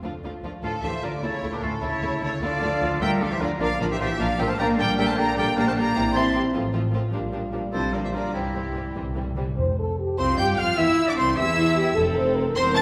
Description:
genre	quick classical-period movement for symphony orchestra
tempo	101 BPM (dotted quarters)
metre	6/8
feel	rubato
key	D minor, F major from 4.8 s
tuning	A4 = 440 Hz
part	rich studio violin section	second line	0.0-12.8 s	G3 to A5	-36 LUFS	equal	none
part	warm studio viola section	accompaniment	0.0-12.8 s	D3 to Bb4	-33 LUFS	equal	none
part	mellow French horn section	sustained chords	0.0-12.8 s	G3 to C5	-31 LUFS	equal	none
part	rich studio double bass section	bass	0.0-12.8 s	E1 to G2	-32 LUFS	equal	none
part	warm chamber violin section	melody	0.6-12.8 s	G4 to A6	-30 LUFS	equal	none
part	small flute group	second line	0.6-12.8 s	C4 to A5	-34 LUFS	equal	none
part	warm oboe	second line	0.6-12.8 s	E4 to A5	-33 LUFS	equal	none
part	warm studio cello section	bass	0.6-12.8 s	E2 to C4	-32 LUFS	equal	none
part	timpani	percussion	8.3-12.5 s	F2 to C3	-33 LUFS	equal	none
room	wet recital hall reverb, RT60 1.7 s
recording	recorded in a church or concert hall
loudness	-24 LUFS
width	mono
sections	0.0-9.6 A section; 9.6-12.8 B section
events	timpani fill 8.3-9.6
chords	0.0 Dm; 1.2 A/D; 2.4 Dm; 3.6 Bb; 4.8 Gm/Bb; 6.0 C7/Bb; 6.5 F/A; 7.1 Gm7/Bb; 8.3 C; 9.6 N.C.; 10.2 F5/C; 10.8 C; 12.0 F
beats	| 0.03 0.63 | 1.24 1.83 | 2.43 3.02 | 3.61 4.20 | 4.79 5.37 | 5.96 6.54 | 7.13 7.73 | 8.35 8.96 | 9.58 10.19 | 10.78 11.38 | 11.97 12.57

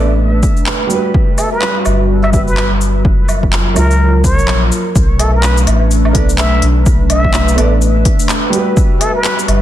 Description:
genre	future garage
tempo	126 BPM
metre	4/4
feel	swing 60% on 16ths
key	unclear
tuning	A4 = 438 Hz
part	felt-muted upright piano	accompaniment	0.0-9.6 s	F#3 to D5	-21 LUFS	right 4 dB	vintage 12-bit sampler grit, sidechain pumping, dub echo
part	dark analog pad	sustained chords	0.0-9.6 s	F#3 to B4	-18 LUFS	left 2 dB	chorus, vintage 12-bit sampler grit, sidechain pumping
part	soft dub sub bass	bass	0.0-9.6 s	F#1 to C#2	-13 LUFS	equal	tube saturation, sidechain pumping
part	electronic kick drum	drums	0.4-8.9 s	none	-13 LUFS	equal	overdrive
part	organic electronic drum kit	drums	0.4-9.6 s	handclaps, hi-hat, shaker, woodblock	-18 LUFS	equal	none
part	trumpet with plunger mute	melody	1.4-9.4 s	A4 to E5	-20 LUFS	equal	vintage 12-bit sampler grit, dub echo
room	little or no reverb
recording	dense, heavily limited modern master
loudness	-10 LUFS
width	side -12 dB against mid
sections	0.0-5.0 A section; 5.0-9.6 B section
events	band accent 4.5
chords	0.0 Bm7; 1.1 Gmaj7; 3.1 F#maj7; 5.0 Bm7; 8.8 Gmaj7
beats	0.20 0.67 | 1.15 1.62 2.10 2.58 | 3.05 3.53 4.00 4.48 | 4.96 5.43 5.91 6.39 | 6.86 7.34 7.82 8.29 | 8.77 9.24

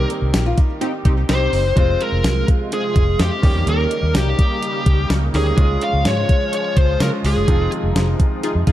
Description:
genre	1980s-style pop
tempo	126 BPM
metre	4/4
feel	straight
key	F minor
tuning	A4 = 440 Hz
part	high-gain lead guitar	melody	0.0-7.7 s	G4 to F5	-22 LUFS	left 1 dB	distortion, digital delay
part	bright grand piano	accompaniment	0.0-8.7 s	Eb3 to G4	-27 LUFS	right 2 dB	none
part	vintage muted fingered electric bass	bass	0.0-8.7 s	F1 to Db3	-19 LUFS	equal	none
part	flamenco guitar	second line	0.1-1.1 s	Eb4 to G4	-28 LUFS	left 4 dB	digital delay
part	clean 12-bit digital drum machine	drums	0.1-8.7 s	hi-hat, kick drum, snare drum, tambourine	-18 LUFS	equal	none
part	funky polysynth comp	stabs	0.8-1.6, 8.4-8.7 s	C4 to Ab4	-24 LUFS	equal	chorus, digital delay
part	sweeping resonant pad	sustained chords	1.8-8.7 s	C3 to F4	-27 LUFS	equal	chorus
room	light reverb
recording	dark, warm production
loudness	-15 LUFS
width	side -13 dB against mid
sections	0.0-8.7 A section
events	band accent 0.0-1.8, 7.5-8.7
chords	0.0 Cm7; 1.8 Fm; 3.4 Eb7; 5.6 Db; 7.5 Fm7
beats	0.34 0.82 1.29 | 1.77 2.25 2.72 3.20 | 3.67 4.15 4.63 5.10 | 5.58 6.05 6.53 7.01 | 7.48 7.96 8.44

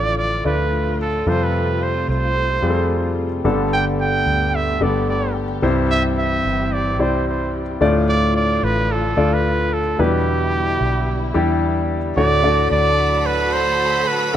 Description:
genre	piano-driven pop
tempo	110 BPM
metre	4/4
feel	swing 56% on 16ths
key	unclear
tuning	A4 = 437 Hz
part	clear trumpet	melody	0.0-14.4 s	G4 to G5	-21 LUFS	right 3 dB	plate reverb
part	warm concert grand piano	accompaniment	0.0-14.4 s	G2 to D5	-20 LUFS	left 2 dB	none
part	dark studio string section	sustained chords	0.0-14.4 s	C3 to G4	-29 LUFS	left 1 dB	none
part	vintage muted fingered electric bass	bass	0.0-14.0 s	G1 to F2	-22 LUFS	right 1 dB	none
part	clear studio violin section	second line	12.2-14.4 s	A4 to B5	-26 LUFS	right 1 dB	none
room	moderate small room reverb, RT60 0.5 s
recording	rough home demo mix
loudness	-16 LUFS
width	side -10 dB against mid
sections	0.0-12.2 A section; 12.2-14.4 B section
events	none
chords	0.0 Dm; 1.3 Fadd9; 3.4 Gadd9; 5.6 C; 7.8 Dm; 10.0 Em7; 12.2 D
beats	0.18 0.72 | 1.27 1.81 2.36 2.90 | 3.45 3.99 4.54 5.08 | 5.63 6.17 6.72 7.26 | 7.81 8.35 8.90 9.44 | 9.99 10.53 11.08 11.62 | 12.17 12.71 13.26 13.80 | 14.35

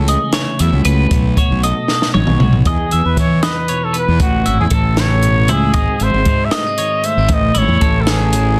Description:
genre	math rock and midwest emo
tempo	77 BPM (dotted quarters)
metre	6/8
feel	straight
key	E major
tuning	A4 = 440 Hz
part	twelve-string electric guitar	accompaniment	0.0-8.6 s	E2 to A4	-23 LUFS	equal	none
part	twelve-string electric guitar	arpeggios	0.0-8.3 s	E4 to E5	-24 LUFS	equal	slapback echo
part	fuzz fingered electric bass	bass	0.0-8.6 s	G#1 to E3	-18 LUFS	equal	overdrive
part	compact cocktail drum kit	drums	0.1-8.5 s	hi-hat, kick drum, snare drum, toms	-19 LUFS	equal	none
part	breathy trumpet	melody	2.7-8.6 s	F#4 to E5	-21 LUFS	equal	slapback echo
room	light reverb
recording	dense, heavily limited modern master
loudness	-15 LUFS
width	mono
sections	0.0-2.7 A section; 2.7-8.6 B section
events	drum fill 1.9-2.7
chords	0.0 F#m7/C#; 1.1 B9; 2.7 E5; 4.2 A; 5.8 G#7; 7.3 Amaj7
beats	0.33 | 1.10 1.88 | 2.65 3.43 | 4.21 4.98 | 5.76 6.54 | 7.31 8.09

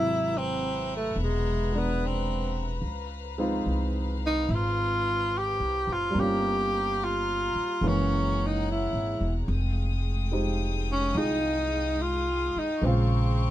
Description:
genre	jazz ballad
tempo	72 BPM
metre	4/4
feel	swing 68% on 8ths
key	F minor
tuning	A4 = 440 Hz
part	warm tenor saxophone	melody	0.0-13.5 s	Ab3 to G4	-28 LUFS	equal	none
part	warm baby grand piano	accompaniment	0.0-13.5 s	C3 to C5	-32 LUFS	right 1 dB	none
part	warm chamber string section	sustained chords	0.0-13.5 s	Ab3 to Eb6	-37 LUFS	left 5 dB	none
part	upright bass	bass	0.0-13.5 s	E1 to Db2	-29 LUFS	equal	none
room	little or no reverb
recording	close, detailed microphones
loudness	-25 LUFS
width	side -13 dB against mid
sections	0.0-13.5 A section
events	none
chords	0.0 Ab7alt; 2.8 Dbmaj7; 6.2 Gm7b5; 7.8 Gb9; 9.5 Fm9; 12.8 Bbm7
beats	0.32 1.15 1.98 | 2.82 3.65 4.49 5.32 | 6.15 6.99 7.82 8.65 | 9.48 10.32 11.15 11.99 | 12.82

